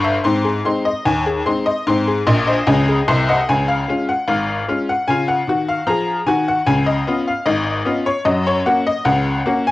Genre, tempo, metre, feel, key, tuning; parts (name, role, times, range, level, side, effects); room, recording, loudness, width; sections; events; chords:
ragtime piano; 75 BPM; 2/4; straight; Db major; A4 = 439 Hz
tack piano; solo; 0.0-9.7 s; G1 to C6; -15 LUFS; left 1 dB; cassette tape
light reverb; home recording on cassette; -15 LUFS; side -17 dB against mid
0.0-3.5 A section; 3.5-9.7 B section
honky-tonk piano fill 2.3-3.5
0.2 Ab; 3.5 Db; 6.7 Db7; 8.3 Gb